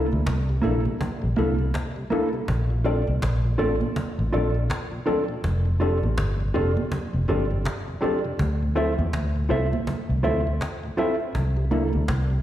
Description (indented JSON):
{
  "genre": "lovers rock reggae",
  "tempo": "81 BPM",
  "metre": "4/4",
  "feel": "swing 59% on 16ths",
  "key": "F major",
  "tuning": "A4 = 440 Hz",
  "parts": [
    { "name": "mellow tine electric piano", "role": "accompaniment", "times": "0.0-11.9 s", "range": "Bb3 to A4", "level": "-28 LUFS", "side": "left 3 dB", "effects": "medium stereo tremolo, slapback echo" },
    { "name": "mellow tonewheel organ", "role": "accompaniment", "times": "0.0-12.4 s", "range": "D2 to E4", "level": "-35 LUFS", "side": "left 1 dB", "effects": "slow rotary speaker, tape echo, slapback echo" },
    { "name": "mellow electric guitar", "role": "stabs", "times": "0.0-11.9 s", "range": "Bb3 to E5", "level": "-30 LUFS", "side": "right 3 dB", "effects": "spring reverb, slapback echo" },
    { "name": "vintage muted fingered electric bass", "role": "bass", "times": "0.0-12.4 s", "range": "F1 to E2", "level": "-23 LUFS", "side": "equal", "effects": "none" },
    { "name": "cajon", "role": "drums", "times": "0.1-12.3 s", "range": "none", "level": "-31 LUFS", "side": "equal", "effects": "slapback echo" },
    { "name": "congas", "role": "percussion", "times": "0.1-12.3 s", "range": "none", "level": "-35 LUFS", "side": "right 5 dB", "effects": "slapback echo" }
  ],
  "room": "light reverb, small room ambience",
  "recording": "live gig heard through the venue's PA, recital hall reverb",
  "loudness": "-22 LUFS",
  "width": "side -12 dB against mid",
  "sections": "0.0-12.4 A section",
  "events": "none",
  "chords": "0.0 C13; 2.5 Bbmaj7; 5.4 F6; 8.4 Dm9; 11.3 C13",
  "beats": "0.27 1.01 1.75 | 2.48 3.22 3.96 4.70 | 5.44 6.18 6.92 7.66 | 8.40 9.13 9.87 10.61 | 11.35 12.09"
}